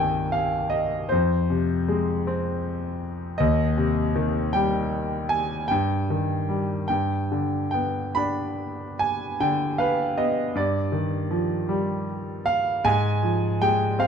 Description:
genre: classical, lyrical solo piano.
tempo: 52 BPM (dotted quarters).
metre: 6/8.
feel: rubato.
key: C minor.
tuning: A4 = 439 Hz.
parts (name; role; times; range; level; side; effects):
clear grand piano; solo; 0.0-14.1 s; C2 to B5; -22 LUFS; equal; none.
room: light reverb.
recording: dark, warm production.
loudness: -22 LUFS.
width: side -7 dB against mid.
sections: 0.0-14.1 A section.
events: none.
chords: 0.0 Cm; 1.1 Fm; 3.4 Cm/Eb; 5.7 Eb/G; 6.9 G; 10.6 Ebadd9/G; 12.9 Fm/Ab.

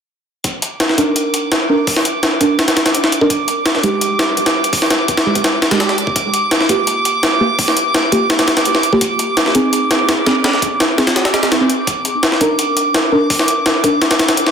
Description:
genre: drum and bass, jungle.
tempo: 168 BPM.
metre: 4/4.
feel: straight.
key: unclear.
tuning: A4 = 437 Hz.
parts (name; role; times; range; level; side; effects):
jungle sampler-style drum kit; drums; 0.4-14.5 s; hi-hat, kick drum, snare drum; -14 LUFS; left 1 dB; high-pass filter on hats, high-pass filter on kick, high-pass filter on snare, high-pass filter on room.
drifting glass-harmonics texture; texture; 1.1-14.5 s; D6; -19 LUFS; right 3 dB; chorus, built-in reverb.
deep mellow chord stab; stabs; 1.0-13.9 s; Ab3 to Bb4; -18 LUFS; right 1 dB; lush chorus, dub echo.
swell; sound effects; 11.3-11.9 s; none; -25 LUFS; right 8 dB; none.
room: moderate plate reverb, RT60 2.1 s.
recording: dense, heavily limited modern master.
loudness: -12 LUFS.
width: side -7 dB against mid.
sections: 0.4-14.5 A section.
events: swell 11.3-11.9.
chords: 0.4 Bbadd11/D; 3.3 Ebmaj7; 6.2 Gm7; 9.0 Cmadd9; 11.9 Bbadd11/D.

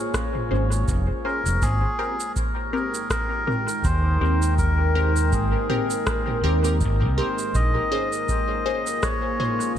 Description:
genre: ambient dub.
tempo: 81 BPM.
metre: 4/4.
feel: swing 56% on 16ths.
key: unclear.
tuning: A4 = 442 Hz.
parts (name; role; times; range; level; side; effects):
deep dark ambient pad; sustained chords; 0.0-9.8 s; Ab3 to G5; -28 LUFS; left 1 dB; chorus, built-in reverb.
filtered dub chord stab; stabs; 0.0-9.6 s; C4 to C5; -30 LUFS; left 1 dB; phaser, dub echo.
electronic kick drum; drums; 0.1-9.2 s; none; -28 LUFS; equal; studio reverb.
organic electronic drum kit; drums; 0.1-9.7 s; cabasa, rim click, toms; -31 LUFS; right 1 dB; studio reverb, dub echo.
overdriven fingered electric bass; bass; 0.5-7.7 s; F1 to Eb2; -21 LUFS; equal; none.
melodica; melody; 1.3-9.7 s; Ab4 to Eb5; -27 LUFS; left 1 dB; dub echo.
room: light reverb.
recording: none.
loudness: -20 LUFS.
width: side -10 dB against mid.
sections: 0.0-9.8 A section.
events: none.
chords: 0.0 Bbm7; 1.6 Abmaj9; 7.5 Bbm7.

